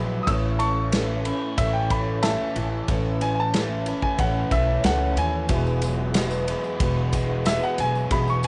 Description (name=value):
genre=folk rock and heartland rock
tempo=92 BPM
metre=4/4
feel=straight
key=unclear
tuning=A4 = 443 Hz
part: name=clear concert grand piano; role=melody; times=0.0-8.5 s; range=E5 to E6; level=-29 LUFS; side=equal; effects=cassette tape
part: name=clear grand piano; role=accompaniment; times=0.0-8.5 s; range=E4 to E5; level=-42 LUFS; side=equal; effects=none
part: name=picked steel-string acoustic guitar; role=accompaniment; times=0.0-8.5 s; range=E2 to F#4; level=-32 LUFS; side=equal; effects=none
part: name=mellow tonewheel organ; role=sustained chords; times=0.0-8.5 s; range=B3 to C#5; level=-39 LUFS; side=equal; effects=none
part: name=overdriven semi-hollow guitar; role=riff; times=0.0-8.5 s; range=E2 to E4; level=-34 LUFS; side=equal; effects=none
part: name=upright bass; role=bass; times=0.0-8.5 s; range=E1 to D#2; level=-28 LUFS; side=equal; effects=none
part: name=natural country drum kit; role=drums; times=0.3-8.5 s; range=kick drum, ride cymbal, snare drum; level=-30 LUFS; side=equal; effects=cassette tape
part: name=tambourine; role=percussion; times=5.5-8.5 s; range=none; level=-45 LUFS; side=equal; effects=none
room=moderate booth ambience, RT60 0.2 s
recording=home recording on cassette, nothing above 10.3 kHz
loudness=-23 LUFS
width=mono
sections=0.0-8.5 A section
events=grand piano solo 0.0-8.5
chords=0.3 A; 5.5 Eadd9